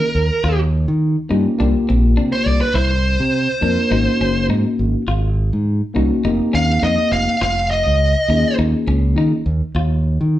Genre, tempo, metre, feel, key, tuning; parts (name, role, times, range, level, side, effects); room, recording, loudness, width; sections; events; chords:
jazz; 103 BPM; 4/4; swing 53% on 16ths; A4 = 440 Hz
smooth overdriven lead guitar; melody; 0.0-8.5 s; Bb4 to F5; -19 LUFS; right 1 dB
tine electric piano; accompaniment; 0.0-9.4 s; Bb3 to Bb4; -20 LUFS; left 2 dB; medium stereo tremolo
clean electric guitar; stabs; 0.0-9.9 s; C4 to F4; -27 LUFS; left 3 dB
modern bright fingered electric bass; bass; 0.1-10.4 s; F1 to Eb3; -17 LUFS; equal
moderate large studio reverb, RT60 0.9 s; band playing live in one room; -15 LUFS; side -13 dB against mid
0.0-10.4 A section
lead electric guitar solo 0.0-10.4
0.0 Eb7sus2; 1.6 C9sus4; 3.9 Ab9sus4; 6.2 F9sus4; 8.3 Eb9sus4